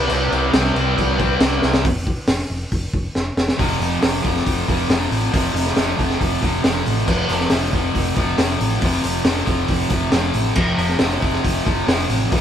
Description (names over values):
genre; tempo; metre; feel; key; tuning
garage rock duo or trio; 138 BPM; 4/4; straight; F major from 3.6 s; A4 = 439 Hz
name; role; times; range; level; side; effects
fuzz guitar; riff; 0.0-12.4 s; F2 to C4; -20 LUFS; equal; distortion
hollow-body short-scale fingered electric bass; bass; 0.0-12.4 s; F1 to C2; -24 LUFS; equal; none
crunchy breakbeat drum kit; drums; 0.1-12.4 s; crash cymbal, hi-hat, kick drum, snare drum; -20 LUFS; equal; none
room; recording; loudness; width
light reverb; band playing live in one room; -16 LUFS; side -9 dB against mid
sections
0.0-1.8 A section; 1.8-3.6 B section; 3.6-12.4 C section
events
drum fill 1.6, 3.2-3.6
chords
0.0 C5; 1.8 N.C.; 3.6 F5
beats
| 0.10 0.54 0.97 1.41 | 1.84 2.28 2.72 3.15 | 3.59 4.02 4.46 4.89 | 5.33 5.77 6.20 6.64 | 7.07 7.51 7.95 8.38 | 8.82 9.26 9.69 10.13 | 10.56 11.00 11.44 11.88 | 12.31